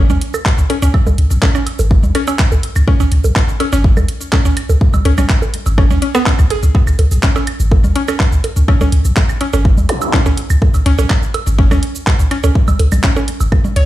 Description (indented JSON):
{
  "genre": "minimal techno",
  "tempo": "124 BPM",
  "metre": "4/4",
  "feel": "straight",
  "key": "C# minor",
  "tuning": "A4 = 442 Hz",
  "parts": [
    { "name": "punchy sub bass", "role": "bass", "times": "0.0-13.8 s", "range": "G#1 to E2", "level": "-12 LUFS", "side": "equal", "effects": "tube saturation, sidechain pumping" },
    { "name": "mallet-like synth pluck", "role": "riff", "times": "0.1-13.8 s", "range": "B3 to C#5", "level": "-20 LUFS", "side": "equal", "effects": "chorus, vintage 12-bit sampler grit, sidechain pumping, digital delay" },
    { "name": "house drum kit", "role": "drums", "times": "0.1-13.9 s", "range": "handclaps, hi-hat, shaker", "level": "-22 LUFS", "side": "equal", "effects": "none" },
    { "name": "congas, bongos, claves and woodblock", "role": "percussion", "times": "0.1-13.7 s", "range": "none", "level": "-23 LUFS", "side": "right 3 dB", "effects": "ping-pong delay" },
    { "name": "electronic kick drum", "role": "drums", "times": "0.5-13.6 s", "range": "none", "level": "-13 LUFS", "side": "equal", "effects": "none" },
    { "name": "zap", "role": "sound effects", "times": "9.9-10.0 s", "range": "none", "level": "-20 LUFS", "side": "left 1 dB", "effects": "none" }
  ],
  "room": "little or no reverb",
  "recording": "played on a big sound system in a bare room, stone room reverb",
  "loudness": "-11 LUFS",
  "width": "side -15 dB against mid",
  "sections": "0.0-13.9 A section",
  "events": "none",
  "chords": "0.0 C#5"
}